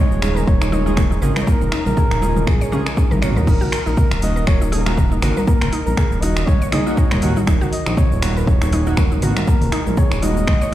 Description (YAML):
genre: afro house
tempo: 120 BPM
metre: 4/4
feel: swing 56% on 16ths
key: Eb minor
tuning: A4 = 438 Hz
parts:
  - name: trumpet with bucket mute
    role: melody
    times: 0.0-10.7 s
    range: Ab4 to Eb5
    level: -27 LUFS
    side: equal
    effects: digital delay
  - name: warm analog pad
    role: sustained chords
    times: 0.0-10.7 s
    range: Db3 to Bb4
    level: -28 LUFS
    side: equal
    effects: chorus, vintage 12-bit sampler grit, sidechain pumping
  - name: smooth synth bass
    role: bass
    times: 0.1-10.4 s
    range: Eb1 to Eb2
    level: -20 LUFS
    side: equal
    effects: sidechain pumping
  - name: deep house drum kit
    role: drums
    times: 0.1-10.7 s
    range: crash cymbal, finger snaps, hi-hat, shaker, toms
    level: -26 LUFS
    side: equal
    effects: overdrive
  - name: warm analog keys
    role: stabs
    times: 0.2-10.7 s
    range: Ab3 to Bb4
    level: -27 LUFS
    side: right 3 dB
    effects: chorus, sidechain pumping, digital delay
  - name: congas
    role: percussion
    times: 0.2-10.6 s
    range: none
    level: -25 LUFS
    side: right 1 dB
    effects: none
  - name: mallet-like synth pluck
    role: arpeggios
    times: 0.4-10.7 s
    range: Bb3 to Db5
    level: -27 LUFS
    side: left 1 dB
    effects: chorus, sidechain pumping, digital delay
  - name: electronic kick drum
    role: drums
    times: 0.5-10.6 s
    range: none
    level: -17 LUFS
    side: equal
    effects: overdrive
room: little or no reverb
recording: played on a big sound system in a bare room, large studio reverb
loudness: -15 LUFS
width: side -13 dB against mid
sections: 0.0-10.7 A section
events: none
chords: 0.0 Db/Eb; 3.5 Ebm7; 7.5 Bmaj7/D#